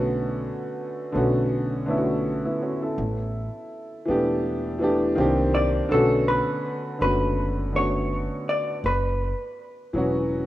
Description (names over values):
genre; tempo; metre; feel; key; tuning
lo-fi hip hop; 82 BPM; 4/4; swing 57% on 16ths; B minor; A4 = 440 Hz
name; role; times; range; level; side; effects
clear upright piano; accompaniment; 0.0-10.5 s; D3 to A4; -24 LUFS; equal; cassette tape
upright bass; bass; 0.0-10.5 s; E1 to C2; -28 LUFS; equal; none
vintage hollow-body jazz guitar; melody; 5.5-10.3 s; A4 to D5; -25 LUFS; left 1 dB; none
room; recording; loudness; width
moderate lush hall reverb, RT60 2.3 s; rough home demo mix, cassette tape; -22 LUFS; side -14 dB against mid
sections
0.0-10.5 A section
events
none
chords
0.0 Bm9; 3.0 A7sus4; 5.2 Cm9; 5.9 Bm9; 8.8 F#7sus4